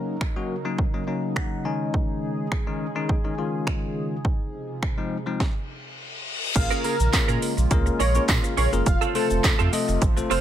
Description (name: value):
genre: dance-pop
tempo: 104 BPM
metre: 4/4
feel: straight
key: Bb minor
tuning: A4 = 440 Hz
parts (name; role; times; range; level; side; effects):
- bell-like tine electric piano; accompaniment; 0.0-10.4 s; Eb3 to Ab5; -28 LUFS; left 4 dB; sidechain pumping
- chorused pulse-width pad; sustained chords; 0.0-10.4 s; C3 to Bb4; -32 LUFS; right 2 dB; sidechain pumping
- house drum kit; drums; 0.2-10.4 s; crash cymbal, finger snaps, handclaps, hi-hat, kick drum, shaker, snare drum; -24 LUFS; right 1 dB; none
- reverse cymbal; sound effects; 5.8-6.6 s; none; -31 LUFS; left 5 dB; none
- wide unison lead; melody; 6.6-10.4 s; A4 to F5; -28 LUFS; right 1 dB; sidechain pumping, digital delay
- direct-recorded clean electric guitar; riff; 6.6-10.4 s; C4 to Bb4; -29 LUFS; right 12 dB; analog chorus
- saturated sub bass; bass; 6.6-10.4 s; F1 to Bb2; -24 LUFS; right 1 dB; sidechain pumping
- tambourine; percussion; 7.1-9.6 s; none; -36 LUFS; right 18 dB; none
room: digital ambience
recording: none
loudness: -22 LUFS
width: side -10 dB against mid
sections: 0.0-6.6 A section; 6.6-10.4 B section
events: tine electric piano fill 1.1-1.9; reverse cymbal 5.8-6.6; drop 6.6-10.4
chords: 0.0 Ebm7; 1.7 Absus4; 4.2 Fm7; 6.6 Bbm7; 8.9 F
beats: 0.21 0.79 1.36 | 1.94 2.52 3.10 3.67 | 4.25 4.83 5.40 5.98 | 6.56 7.13 7.71 8.29 | 8.86 9.44 10.02